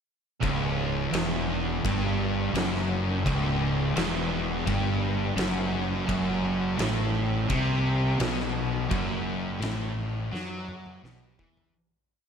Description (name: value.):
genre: stoner and doom metal.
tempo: 85 BPM.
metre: 4/4.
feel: straight.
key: C# minor.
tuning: A4 = 438 Hz.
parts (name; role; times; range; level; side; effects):
distorted electric guitar; riff; 0.4-11.7 s; C#2 to F#3; -34 LUFS; left 1 dB; distortion.
thick fuzz guitar; riff; 0.4-11.7 s; C#2 to F#3; -31 LUFS; left 7 dB; distortion.
thick fuzz guitar; riff; 0.4-11.7 s; C#2 to F#3; -30 LUFS; right 8 dB; distortion.
fuzz fingered electric bass; bass; 0.4-11.7 s; C#1 to F#2; -33 LUFS; equal; overdrive.
oversized low-tuned drum kit; drums; 0.4-11.7 s; kick drum, ride cymbal, snare drum, toms; -32 LUFS; equal; none.
room: little or no reverb.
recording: none.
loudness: -25 LUFS.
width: side -7 dB against mid.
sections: 0.4-11.7 riff.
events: fade-out 8.9-11.7; drum fill 10.3-11.7.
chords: 0.4 C#m; 6.1 Am69/F#.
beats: | 0.42 1.13 1.84 2.55 | 3.26 3.96 4.67 5.38 | 6.08 6.79 7.50 8.20 | 8.91 9.61 10.32 11.03.